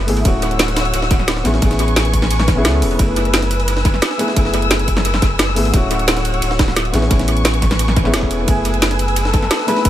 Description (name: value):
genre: liquid drum and bass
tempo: 175 BPM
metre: 4/4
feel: straight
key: F# minor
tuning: A4 = 441 Hz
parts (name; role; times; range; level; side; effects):
- dark concert grand piano; accompaniment; 0.0-9.9 s; A3 to G#5; -22 LUFS; left 1 dB; dub echo
- dark chamber string section; sustained chords; 0.0-9.9 s; G#4 to E6; -23 LUFS; left 1 dB; none
- warm sub bass; bass; 0.0-9.9 s; D1 to C#2; -19 LUFS; equal; none
- breakbeat sampler-style drum kit; drums; 0.1-9.9 s; hi-hat, ride cymbal, snare drum; -23 LUFS; right 1 dB; high-pass filter on cymbals, high-pass filter on snare, high-pass filter on hats, dub echo
- drum and bass drum kit; drums; 0.1-9.9 s; hi-hat, snare drum; -21 LUFS; equal; dub echo
- electronic kick drum; drums; 0.3-9.9 s; none; -16 LUFS; equal; none
- trumpet with bucket mute; melody; 8.5-9.9 s; G#4 to B4; -22 LUFS; left 1 dB; analog delay
room: light reverb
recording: echo-heavy mix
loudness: -13 LUFS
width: side -12 dB against mid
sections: 0.0-9.9 A section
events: none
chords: 0.3 Dmaj9; 1.5 Amaj9; 3.0 F#m11; 5.7 Dmaj9; 6.9 Amaj9; 8.5 F#m11